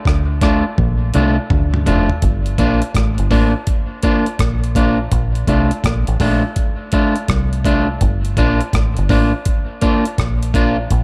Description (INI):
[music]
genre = roots reggae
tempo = 83 BPM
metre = 4/4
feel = swing 65% on 16ths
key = G minor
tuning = A4 = 435 Hz
[part]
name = deep dub fingered electric bass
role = bass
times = 0.1-11.0 s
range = F1 to D2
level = -20 LUFS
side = equal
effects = none
[part]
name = breakbeat sampler-style drum kit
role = drums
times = 0.1-11.0 s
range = hi-hat, kick drum, rim click, toms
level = -20 LUFS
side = equal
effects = none
[part]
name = electric guitar at the edge of break-up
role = accompaniment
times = 0.4-10.8 s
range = A3 to F4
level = -21 LUFS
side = equal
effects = dub echo
[sound]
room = light reverb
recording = none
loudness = -16 LUFS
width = mono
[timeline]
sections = 0.0-2.2 A section; 2.2-11.0 B section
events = drum fill 0.8-2.2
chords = 0.0 Bbmaj7; 2.2 Gm7; 5.1 Bbmaj7; 8.0 Gm7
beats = 0.06 0.78 1.50 | 2.23 2.95 3.67 4.39 | 5.12 5.84 6.57 7.29 | 8.01 8.74 9.46 10.18 | 10.91